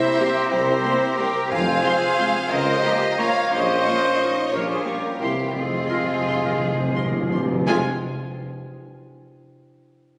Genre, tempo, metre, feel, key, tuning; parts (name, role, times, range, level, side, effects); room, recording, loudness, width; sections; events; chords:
classical; 159-197 BPM; 3/4; rubato; F minor; A4 = 441 Hz
bright oboe; second line; 0.0-7.8 s; Ab5 to Db6; -33 LUFS; equal
clear clarinet; second line; 0.0-7.8 s; E4 to C5; -37 LUFS; equal
mellow concert flute; second line; 0.0-7.9 s; C4 to F5; -34 LUFS; equal
warm symphonic violin section; second line; 0.0-7.9 s; F4 to F5; -28 LUFS; equal
warm bassoon; accompaniment; 0.0-7.8 s; Ab3 to C4; -30 LUFS; equal
mellow trumpet; stabs; 0.0-7.8 s; Ab3 to Db5; -30 LUFS; equal
rich symphonic cello section; bass; 0.0-7.9 s; F2 to Bb4; -32 LUFS; equal
rich symphonic violin section; melody; 0.2-7.9 s; Ab5 to Db6; -36 LUFS; equal
warm symphonic viola section; accompaniment; 0.2-7.9 s; Ab3 to G4; -34 LUFS; equal
dark French horn section; sustained chords; 0.2-7.8 s; Ab3 to Db4; -35 LUFS; equal
mellow trombone section; sustained chords; 0.2-7.8 s; Bb2 to G3; -39 LUFS; equal
mellow tuba; bass; 0.5-7.8 s; F1 to Db2; -33 LUFS; equal
rich symphonic double bass section; bass; 0.5-7.9 s; F1 to F2; -36 LUFS; equal
timpani; percussion; 1.5-2.0, 5.6-7.8 s; F2; -29 LUFS; equal
wet scoring stage reverb, RT60 2.0 s; recorded on a phone in the room, studio reverb; -21 LUFS; mono
0.0-7.7 A section; 7.7-8.7 B section
timpani fill 5.5-7.7
0.0 C7; 1.5 Fm; 2.5 Bbm/Db; 3.5 Bbm; 4.5 Gdim/Bb; 5.2 C7; 5.5 Fm